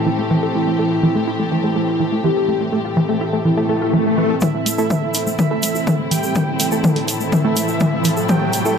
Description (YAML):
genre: melodic techno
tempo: 124 BPM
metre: 4/4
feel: straight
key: A minor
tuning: A4 = 440 Hz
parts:
  - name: soft octave-layered synth lead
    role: melody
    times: 0.0-8.8 s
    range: E4 to G4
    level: -24 LUFS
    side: left 1 dB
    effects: chorus, phaser, sidechain pumping, dub echo
  - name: warm studio string section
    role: sustained chords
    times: 0.0-8.8 s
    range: A2 to G4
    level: -25 LUFS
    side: left 1 dB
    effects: sidechain pumping
  - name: overtone-sweeping drone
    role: drone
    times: 0.0-8.8 s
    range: A2 to A3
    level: -30 LUFS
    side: left 1 dB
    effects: chorus, built-in reverb, sidechain pumping
  - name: granular cloud pad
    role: texture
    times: 0.0-8.8 s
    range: C4 to A5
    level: -28 LUFS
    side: right 2 dB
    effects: built-in reverb, sidechain pumping
  - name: tight sequenced synth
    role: arpeggios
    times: 0.1-8.7 s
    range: E3 to A4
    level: -21 LUFS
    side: right 1 dB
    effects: chorus, cassette tape, sidechain pumping, dub echo
  - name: swell and riser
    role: sound effects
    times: 3.6-8.8 s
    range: none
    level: -24 LUFS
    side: left 1 dB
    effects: none
  - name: big bright polysynth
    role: second line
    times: 4.4-8.8 s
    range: E5 to G5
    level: -26 LUFS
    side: right 4 dB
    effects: sidechain pumping, dub echo
  - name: electronic kick drum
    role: drums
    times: 4.4-8.4 s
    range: none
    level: -29 LUFS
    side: equal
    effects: high-pass filter on kick, high-pass filter on room
  - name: techno drum kit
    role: drums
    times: 4.4-8.6 s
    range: hi-hat, toms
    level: -18 LUFS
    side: left 2 dB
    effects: sidechain pumping on toms, sidechain pumping on hats
  - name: egg shaker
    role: percussion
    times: 4.4-8.8 s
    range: none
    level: -27 LUFS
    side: left 1 dB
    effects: none
  - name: filtered dub chord stab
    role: stabs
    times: 4.8-8.8 s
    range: A3 to A4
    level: -24 LUFS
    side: right 3 dB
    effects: chorus, sidechain pumping, dub echo
room: wet spring reverb, RT60 1.8 s, digital ambience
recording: echo-heavy mix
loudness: -15 LUFS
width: side -6 dB against mid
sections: 0.0-4.4 A section; 4.4-8.8 B section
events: filter sweep on synth arpeggio sound 0.0-4.4, 4.4-8.8; swell 3.6-4.4; build-up 4.4-8.8; drum fill 4.4-8.8; riser 4.4-8.8; filter sweep on soft synth lead 4.4-8.8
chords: 0.0 Am